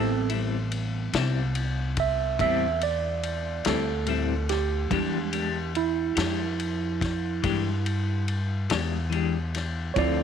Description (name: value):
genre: slow blues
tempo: 48 BPM (dotted quarters)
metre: 12/8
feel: straight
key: unclear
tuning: A4 = 440 Hz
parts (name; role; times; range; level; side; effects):
- semi-hollow electric guitar; accompaniment; 0.0-10.2 s; A2 to G4; -31 LUFS; left 12 dB; tremolo
- tine electric piano; accompaniment; 0.0-10.2 s; F3 to E5; -29 LUFS; right 11 dB; auto-pan
- upright bass; bass; 0.0-10.2 s; A1 to G2; -29 LUFS; left 1 dB; none
- warm soul drum kit; drums; 0.3-10.2 s; kick drum, ride cymbal, snare drum; -32 LUFS; left 5 dB; none
room: light reverb, small room ambience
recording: 1960s-style stereo with parts hard left and right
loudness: -24 LUFS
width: side -8 dB against mid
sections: 0.0-10.2 A section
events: tine electric piano solo 0.0-10.2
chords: 0.0 Am7; 4.9 E7#9